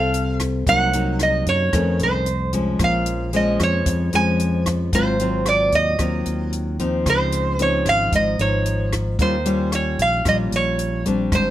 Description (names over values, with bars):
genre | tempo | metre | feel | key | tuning
bossa nova | 113 BPM | 4/4 | straight | unclear | A4 = 436 Hz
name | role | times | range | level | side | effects
lap resonator guitar | melody | 0.0-11.5 s | C5 to Ab5 | -20 LUFS | right 2 dB | none
nylon-string guitar | accompaniment | 0.0-11.5 s | F2 to A4 | -22 LUFS | left 2 dB | none
fingered electric bass | bass | 0.0-11.5 s | Ab1 to Gb2 | -24 LUFS | equal | none
compact cocktail drum kit | drums | 0.1-11.4 s | hi-hat, kick drum, rim click | -26 LUFS | equal | none
room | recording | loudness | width
light reverb | none | -17 LUFS | side -13 dB against mid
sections
0.0-11.5 A section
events
none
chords
0.0 F; 0.7 Cm7b5; 1.7 F7b13; 2.8 Bbm7; 4.9 Ab6; 7.1 Dbmaj9; 9.2 Eb9